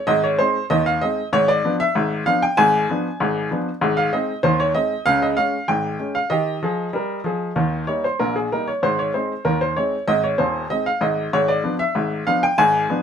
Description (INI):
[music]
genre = ragtime piano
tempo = 96 BPM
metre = 2/4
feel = straight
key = Ab major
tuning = A4 = 445 Hz
[part]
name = clear upright piano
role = solo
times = 0.0-13.0 s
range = Eb1 to Ab5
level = -18 LUFS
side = equal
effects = none
[sound]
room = moderate studio ambience, RT60 0.5 s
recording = minimal, uncompressed stereo recording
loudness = -18 LUFS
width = side -8 dB against mid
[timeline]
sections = 0.0-13.0 A section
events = none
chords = 0.0 Ab; 1.3 Abdim7; 3.8 Ab; 5.1 Db5; 6.3 Ab5/Eb; 7.6 Eb; 8.8 Ab; 11.3 Abdim7